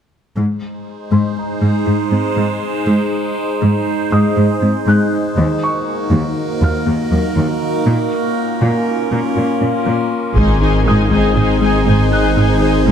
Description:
cinematic, hybrid orchestral and electronic film score; 120 BPM; 5/4; straight; A4 = 440 Hz
evolving wavetable pad; sustained chords; 0.8-12.9 s; Ab3 to C5; -18 LUFS; right 1 dB; phaser, built-in reverb, tremolo
thumb-piano-like synth pluck; arpeggios; 0.4-12.9 s; Eb3 to Ab4; -21 LUFS; left 4 dB; chorus, tape echo
rich symphonic cello section; bass; 0.4-12.9 s; Eb2 to Bb2; -18 LUFS; right 2 dB
dark grand piano; texture; 1.1-12.9 s; Eb5 to Gb6; -26 LUFS; equal; tape echo
rich symphonic violin section; second line; 10.4-12.9 s; C5 to Ab5; -22 LUFS; left 4 dB
warm symphonic viola section; accompaniment; 10.4-12.9 s; Eb4 to Ab4; -20 LUFS; left 1 dB
dark French horn section; sustained chords; 10.4-12.9 s; Eb3 to C4; -20 LUFS; left 2 dB
dark detuned saw bass; bass; 10.4-12.9 s; Ab1; -18 LUFS; equal
warm symphonic double bass section; bass; 10.4-12.9 s; Ab1; -19 LUFS; right 2 dB
solo taiko drums; drums; 10.4-11.3 s; -20 LUFS; equal
light reverb; close, detailed microphones; -13 LUFS; side -8 dB against mid
0.4-10.4 A section; 10.4-12.9 B section
build-up 10.4-12.9
0.4 Ab; 5.4 Ebm; 7.9 Bbm; 10.4 Ab
| 0.37 0.87 1.37 1.87 2.37 | 2.87 3.37 3.87 4.37 4.87 | 5.37 5.87 6.37 6.87 7.37 | 7.87 8.37 8.87 9.37 9.87 | 10.37 10.87 11.37 11.87 12.37 | 12.87

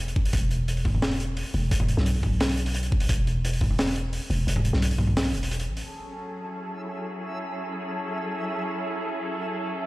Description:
half-time drum and bass; 174 BPM; 4/4; half-time; F# minor; A4 = 440 Hz
growling 808-style bass; bass; 0.0-5.8 s; E1 to B1; -25 LUFS; equal
crunchy breakbeat drum kit; drums; 0.1-5.8 s; hi-hat, snare drum, toms; -28 LUFS; equal
electronic kick drum; drums; 0.2-3.7 s; -24 LUFS; equal
backwards swelling texture; texture; 6.6-9.9 s; E4 to E5; -34 LUFS; right 3 dB; built-in reverb
clear studio string section; sustained chords; 5.9-9.9 s; F#3 to A4; -31 LUFS; left 1 dB; vintage 12-bit sampler grit, sidechain pumping, low-pass filter
light reverb; played on a big sound system in a bare room, stone room reverb; -24 LUFS; side -18 dB against mid
0.0-5.9 A section; 5.9-9.9 B section
kick drops out 4.5-5.9; filter sweep on string section 5.9-9.9
0.3 E5; 5.9 F#m
| 0.34 0.68 1.02 1.37 | 1.72 2.06 2.40 2.75 | 3.09 3.44 3.78 4.13 | 4.47 4.82 5.16 5.51 | 5.85 6.20 6.54 6.89 | 7.23 7.58 7.92 8.27 | 8.61 8.96 9.30 9.65

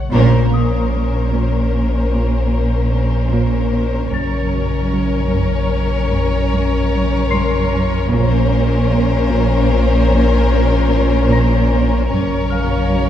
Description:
cinematic, suspense film score; 75 BPM; 5/4; straight; Bb harmonic minor; A4 = 444 Hz
pure sine sub bass; drone; 0.0-13.1 s; Bb1; -19 LUFS; left 1 dB
rich chamber violin section; melody; 0.1-13.1 s; C5 to Db5; -26 LUFS; left 3 dB
warm chamber violin section; second line; 0.1-13.1 s; Db4 to Bb4; -20 LUFS; left 3 dB
warm studio cello section; riff; 0.1-13.1 s; Gb2 to Bb3; -21 LUFS; right 2 dB
rich chamber double bass section; bass; 0.1-13.1 s; Gb1 to Bb1; -21 LUFS; right 1 dB
warm studio cello section; bass; 0.1-13.1 s; Gb2 to Bb2; -22 LUFS; right 1 dB
celesta; texture; 0.5-13.1 s; F5 to C7; -28 LUFS; left 2 dB
wet concert hall reverb, RT60 2.1 s; recorded in a church or concert hall; -14 LUFS; side -10 dB against mid
0.1-13.1 A section
band accent 0.1-0.9
0.1 Bbmadd9; 4.1 Gb; 8.1 Bbmadd9; 12.1 Gb
| 0.12 0.92 1.72 2.52 3.32 | 4.12 4.92 5.72 6.52 7.32 | 8.12 8.92 9.72 10.52 11.32 | 12.12 12.92

